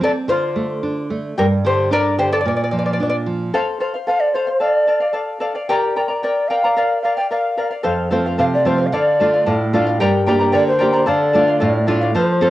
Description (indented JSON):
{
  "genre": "andean folk, Andean ensemble",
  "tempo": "111 BPM",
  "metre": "2/4",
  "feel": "straight",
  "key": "D minor",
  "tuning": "A4 = 440 Hz",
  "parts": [
    { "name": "charango", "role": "accompaniment", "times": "0.0-12.5 s", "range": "F4 to Bb5", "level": "-19 LUFS", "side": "left 2 dB", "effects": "cassette tape" },
    { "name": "nylon-string guitar", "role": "accompaniment", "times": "0.0-3.5, 7.8-12.5 s", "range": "F2 to A4", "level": "-18 LUFS", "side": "right 2 dB", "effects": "cassette tape" },
    { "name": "breathy mellow large quena", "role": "melody", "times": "4.1-12.5 s", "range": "C5 to G5", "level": "-17 LUFS", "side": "equal", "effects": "cassette tape" }
  ],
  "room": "wet studio reverb, RT60 0.6 s",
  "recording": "home recording on cassette",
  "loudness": "-15 LUFS",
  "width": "side -15 dB against mid",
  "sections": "0.0-3.5 A section; 3.5-12.2 B section",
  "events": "charango solo 0.0-3.5",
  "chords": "0.3 Dm; 1.4 Gm; 2.4 Bb; 3.5 F; 4.6 Dm; 5.7 Gm; 6.8 Bb; 7.8 F; 8.9 Dm; 10.0 Gm; 11.1 Dm",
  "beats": "| 0.28 0.82 | 1.36 1.90 | 2.44 2.99 | 3.53 4.07 | 4.61 5.15 | 5.69 6.23 | 6.77 7.31 | 7.85 8.39 | 8.93 9.47 | 10.00 10.54 | 11.08 11.62 | 12.15"
}